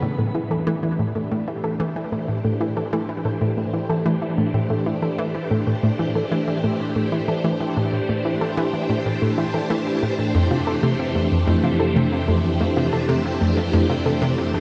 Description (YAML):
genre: ambient, sequencer-driven space music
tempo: 93 BPM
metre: 4/4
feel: straight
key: A minor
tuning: A4 = 440 Hz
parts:
  - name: phased string machine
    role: sustained chords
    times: 0.0-14.6 s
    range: F2 to C5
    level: -26 LUFS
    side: equal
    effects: ensemble chorus, phaser
  - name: analog pluck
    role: riff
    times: 0.0-14.6 s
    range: F2 to E3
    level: -25 LUFS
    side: equal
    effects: chorus, cassette tape, analog delay
  - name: soft round pluck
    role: arpeggios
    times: 0.2-14.6 s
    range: A3 to A4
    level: -29 LUFS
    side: equal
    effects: chorus, analog delay
room: wet cathedral reverb, RT60 6.0 s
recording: in a vast, echoing space, cassette tape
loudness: -22 LUFS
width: mono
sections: 0.0-14.6 A section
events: none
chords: 0.0 Am; 10.3 F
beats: | 0.03 0.67 1.31 1.96 | 2.61 3.25 3.90 4.54 | 5.19 5.83 6.48 7.12 | 7.77 8.41 9.06 9.70 | 10.35 10.99 11.64 12.28 | 12.93 13.57 14.22